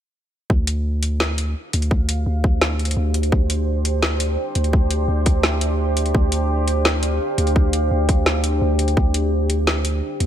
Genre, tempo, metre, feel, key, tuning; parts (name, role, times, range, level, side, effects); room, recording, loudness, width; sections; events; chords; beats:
half-time drum and bass; 170 BPM; 4/4; half-time; D minor; A4 = 444 Hz
deep dark ambient pad; sustained chords; 2.1-10.3 s; D4 to F5; -24 LUFS; right 1 dB; chorus, built-in reverb, sidechain pumping
long sustained 808-style bass; bass; 0.5-10.3 s; D2; -20 LUFS; equal
electronic kick drum; drums; 0.5-9.0 s; -18 LUFS; equal
drum and bass drum kit; drums; 0.7-10.3 s; hi-hat, snare drum; -22 LUFS; equal
light reverb, digital ambience; -17 LUFS; side -10 dB against mid
0.5-10.3 A section
0.5 Dm; 3.3 C/D; 6.1 Dm; 9.0 D9sus4
| 0.50 0.85 1.21 1.56 | 1.91 2.26 2.62 2.97 | 3.32 3.67 4.03 4.38 | 4.73 5.09 5.44 5.79 | 6.15 6.50 6.85 7.21 | 7.56 7.91 8.26 8.62 | 8.97 9.32 9.68 10.03